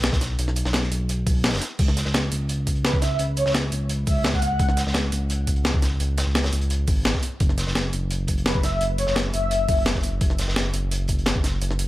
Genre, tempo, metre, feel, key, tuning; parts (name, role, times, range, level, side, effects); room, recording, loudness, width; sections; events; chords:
liquid drum and bass; 171 BPM; 4/4; straight; A4 = 439 Hz
smooth gliding synth bass; bass; 0.0-11.9 s; F#1 to C#2; -24 LUFS; equal
breakbeat sampler-style drum kit; drums; 0.0-11.9 s; crash cymbal, hi-hat, snare drum; -26 LUFS; equal
crunchy breakbeat drum kit; drums; 0.0-11.9 s; hi-hat, snare drum; -32 LUFS; equal; high-pass filter on hats, high-pass filter on snare, high-pass filter on room
electronic kick drum; drums; 0.1-11.4 s; -23 LUFS; equal
breathy flute-like synth lead; melody; 2.8-4.8, 8.5-9.8 s; B4 to F#5; -27 LUFS; left 1 dB; tremolo, ensemble chorus, dub echo
light reverb, small room ambience; -20 LUFS; side -16 dB against mid
0.0-11.9 A section
kick drops out 1.4-1.8
0.0 N.C.; 1.8 C#5; 7.4 F#5